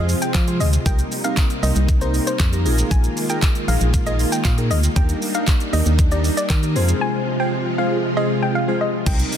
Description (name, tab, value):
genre	dance-pop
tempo	117 BPM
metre	4/4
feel	straight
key	unclear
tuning	A4 = 440 Hz
part	hollow square pluck	melody	0.0-9.3 s	C5 to Ab5	-27 LUFS	left 1 dB	chorus, sidechain pumping, ping-pong delay
part	glassy digital keys	accompaniment	0.0-9.3 s	Ab3 to C5	-26 LUFS	equal	chorus, sidechain pumping
part	string machine, violas	sustained chords	0.0-9.4 s	C3 to F4	-24 LUFS	equal	ensemble chorus, sidechain pumping
part	organ-like FM bass	bass	0.0-9.2 s	Bb1 to F3	-19 LUFS	equal	sidechain pumping
part	pop drum kit	drums	0.1-9.4 s	crash cymbal, handclaps, hi-hat, kick drum, shaker	-20 LUFS	equal	none
part	group handclap	percussion	0.3-6.6 s	none	-38 LUFS	right 9 dB	none
room	light reverb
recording	dense, heavily limited modern master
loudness	-16 LUFS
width	side -9 dB against mid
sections	0.0-9.1 A section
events	drop 0.0-9.1; break 7.0-9.1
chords	0.0 Fm; 0.9 Cm7; 2.7 Bb7sus4; 5.0 Ebmaj7; 6.8 Fm